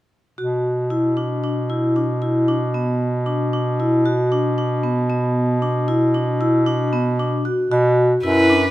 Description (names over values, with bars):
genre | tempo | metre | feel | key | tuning
contemporary instrumental, chamber music in an uneven meter | 115 BPM | 7/4 | straight | B minor | A4 = 440 Hz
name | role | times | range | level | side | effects
vibraphone with medium mallets | arpeggios | 0.4-8.7 s | B3 to F#4 | -20 LUFS | left 1 dB | none
clear bass clarinet | bass | 0.4-8.7 s | F#2 to B2 | -20 LUFS | right 1 dB | none
rich violin | melody | 8.2-8.7 s | B4 | -17 LUFS | right 1 dB | none
room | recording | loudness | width
moderate recital hall reverb, RT60 1.6 s | close, detailed microphones | -17 LUFS | side -15 dB against mid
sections
0.4-7.7 A section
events
none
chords
0.4 Bm